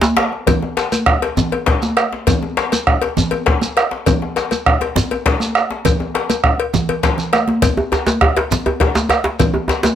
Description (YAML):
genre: west african traditional, West African drum ensemble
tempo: 134 BPM (dotted quarters)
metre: 12/8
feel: straight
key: none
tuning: none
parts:
  - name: congas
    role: percussion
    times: 0.0-9.9 s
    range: none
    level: -21 LUFS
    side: right 3 dB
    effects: none
  - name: djembe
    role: percussion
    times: 0.0-0.2, 7.8-9.9 s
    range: none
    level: -18 LUFS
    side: right 2 dB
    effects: none
  - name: shekere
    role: percussion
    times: 0.0-9.9 s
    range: none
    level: -23 LUFS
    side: right 2 dB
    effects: none
  - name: bombo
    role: percussion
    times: 0.2-9.5 s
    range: none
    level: -16 LUFS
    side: right 1 dB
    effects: none
  - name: djembe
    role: percussion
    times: 0.2-9.9 s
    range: none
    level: -22 LUFS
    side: left 5 dB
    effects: none
  - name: cowbell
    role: percussion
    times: 0.5-9.9 s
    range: none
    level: -22 LUFS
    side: left 7 dB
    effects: none
room: moderate studio reverb, RT60 0.6 s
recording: none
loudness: -14 LUFS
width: side -10 dB against mid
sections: 0.5-9.9 A section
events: drum fill 0.0-0.5, 6.9-7.6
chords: none